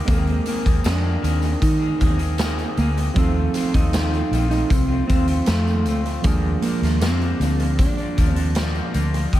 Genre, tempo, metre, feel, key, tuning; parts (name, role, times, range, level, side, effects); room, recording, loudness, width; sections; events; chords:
indie pop, bedroom pop; 78 BPM; 4/4; straight; A4 = 440 Hz
electric guitar at the edge of break-up; accompaniment; 0.0-9.4 s; Bb2 to Ab4; -28 LUFS; left 4 dB; wide subtle chorus, vibrato effect, analog delay
tine electric piano; accompaniment; 0.0-9.3 s; F3 to Bb4; -30 LUFS; right 5 dB; overdrive, cassette tape
clean lap steel guitar; melody; 0.1-8.5 s; A3 to Eb4; -25 LUFS; right 2 dB; wide subtle chorus, analog delay
vintage muted fingered electric bass; bass; 0.1-9.4 s; Bb1 to Eb3; -21 LUFS; equal
raw garage drum kit; drums; 0.1-9.4 s; hi-hat, kick drum, snare drum; -23 LUFS; equal
tambourine; percussion; 0.1-9.1 s; -43 LUFS; left 9 dB
small room ambience; echo-heavy mix; -18 LUFS; side -14 dB against mid
0.0-9.3 A section
0.1 Abadd9/Eb; 3.2 F7; 6.2 Bb7